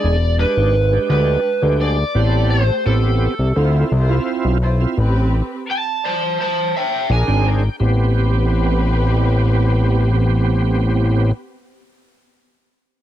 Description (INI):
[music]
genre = blues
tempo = 85 BPM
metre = 4/4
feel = straight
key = A minor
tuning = A4 = 440 Hz
[part]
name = lead guitar through a small cranked amp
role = melody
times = 0.0-7.5 s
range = A4 to A5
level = -20 LUFS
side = right 1 dB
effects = overdrive
[part]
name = bright tonewheel organ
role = accompaniment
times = 0.0-11.3 s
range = G#3 to Bb5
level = -23 LUFS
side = right 5 dB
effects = slow rotary speaker, overdrive, chorus vibrato
[part]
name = muted studio string section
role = sustained chords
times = 0.0-11.3 s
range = G#3 to C5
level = -28 LUFS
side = left 1 dB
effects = none
[part]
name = fat analog bass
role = bass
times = 0.0-11.3 s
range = E1 to D2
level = -15 LUFS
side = equal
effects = none
[sound]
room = digital ambience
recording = dry, close 1970s-style studio recording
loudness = -15 LUFS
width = side -12 dB against mid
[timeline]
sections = 0.0-7.8 A section; 7.8-10.6 B section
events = stop 5.0-7.1; tonewheel organ fill 5.7-7.8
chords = 0.0 E7#9; 2.2 Am9; 3.6 Dm9; 5.0 Am9; 7.1 Bb7; 7.8 Am9